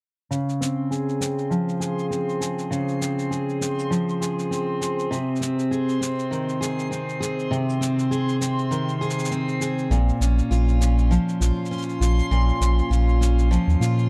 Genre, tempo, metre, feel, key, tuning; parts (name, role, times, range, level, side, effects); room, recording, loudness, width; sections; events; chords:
folktronica; 100 BPM; 4/4; swing 56% on 16ths; A4 = 442 Hz
picked steel-string acoustic guitar; arpeggios; 0.3-14.1 s; Bb2 to Ab4; -26 LUFS; equal; low-pass filter, tape echo
shaker; drums; 0.3-14.1 s; -36 LUFS; equal
backwards swelling texture; texture; 1.9-14.1 s; C6; -37 LUFS; equal; built-in reverb
warm sub bass; bass; 9.9-14.1 s; Bb1 to Bb2; -21 LUFS; equal
little or no reverb; dry, close 1970s-style studio recording; -23 LUFS; mono
0.3-14.1 A section
filter sweep on steel-string acoustic guitar 0.3-14.1
0.3 Dbmaj7; 5.1 Ab/C; 9.9 Bbmadd9